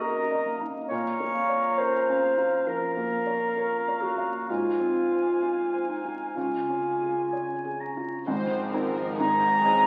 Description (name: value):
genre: cinematic, emotional film score for orchestra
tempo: 62-68 BPM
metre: 4/4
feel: rubato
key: unclear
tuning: A4 = 440 Hz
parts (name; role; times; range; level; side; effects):
- mellow clarinet; second line; 0.0-7.8 s; Eb4 to Db5; -29 LUFS; equal; none
- mellow hollow silver concert flute; second line; 0.0-9.9 s; Ab5 to Bb5; -31 LUFS; equal; none
- warm oboe; second line; 0.0-8.3 s; Eb5 to Bb5; -41 LUFS; equal; none
- felt-muted upright piano; accompaniment; 0.0-9.9 s; Ab1 to F5; -35 LUFS; equal; none
- concert harp; arpeggios; 0.0-9.9 s; Gb2 to F5; -41 LUFS; equal; none
- warm symphonic violin section; melody; 8.3-9.9 s; Ab4 to C5; -35 LUFS; equal; none
- warm symphonic violin section; second line; 8.3-9.9 s; C4 to Eb4; -39 LUFS; equal; none
- dark symphonic viola section; accompaniment; 8.3-9.9 s; Eb3 to Gb3; -38 LUFS; equal; none
- dark symphonic double bass section; bass; 8.3-9.9 s; Ab1; -46 LUFS; equal; none
- rich symphonic cello section; bass; 8.3-9.9 s; Ab2; -41 LUFS; equal; none
room: wet recital hall reverb, RT60 1.3 s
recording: very old 78 rpm record, vinyl crackle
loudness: -27 LUFS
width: mono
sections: 0.0-8.3 A section; 8.3-9.9 A section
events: none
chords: 0.0 Ebm/Gb; 0.9 Bbm; 4.5 Fm/Ab; 6.4 Db; 8.3 Ab